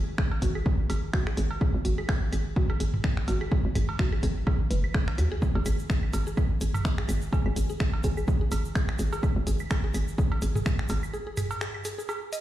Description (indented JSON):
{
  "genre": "minimal techno",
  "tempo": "126 BPM",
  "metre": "4/4",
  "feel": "swing 56% on 16ths",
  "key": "unclear",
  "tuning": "A4 = 440 Hz",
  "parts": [
    { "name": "hollow knocking FM bass", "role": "bass", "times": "0.0-11.1 s", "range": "F#1 to D#2", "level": "-28 LUFS", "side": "equal", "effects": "sidechain pumping" },
    { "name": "mallet-like synth pluck", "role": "riff", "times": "0.2-12.4 s", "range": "F#4 to D#5", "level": "-37 LUFS", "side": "equal", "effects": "chorus, sidechain pumping, ping-pong delay" },
    { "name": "electronic kick drum", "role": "drums", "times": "0.2-10.8 s", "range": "none", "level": "-27 LUFS", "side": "equal", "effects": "overdrive" },
    { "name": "minimal click drum kit", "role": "drums", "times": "0.2-12.4 s", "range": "finger snaps, hi-hat", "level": "-38 LUFS", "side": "equal", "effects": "none" },
    { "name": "electronic claves, cowbell and toms", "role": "percussion", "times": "0.2-12.2 s", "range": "none", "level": "-36 LUFS", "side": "right 2 dB", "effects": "ping-pong delay" },
    { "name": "tube shaker", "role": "percussion", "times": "5.4-12.4 s", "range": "none", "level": "-45 LUFS", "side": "right 3 dB", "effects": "none" },
    { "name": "thumb-piano-like synth pluck", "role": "melody", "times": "7.3-8.2 s", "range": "G#4", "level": "-39 LUFS", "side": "equal", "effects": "chorus, ping-pong delay" }
  ],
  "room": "little or no reverb",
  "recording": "played on a big sound system in a bare room, large studio reverb",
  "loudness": "-25 LUFS",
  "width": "side -13 dB against mid",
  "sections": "0.0-12.4 A section",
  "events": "break 11.1-12.4",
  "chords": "0.0 G#5",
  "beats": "0.18 0.66 1.14 | 1.61 2.09 2.56 3.04 | 3.52 3.99 4.47 4.95 | 5.42 5.90 6.37 6.85 | 7.33 7.80 8.28 8.75 | 9.23 9.71 10.18 10.66 | 11.13 11.61 12.09"
}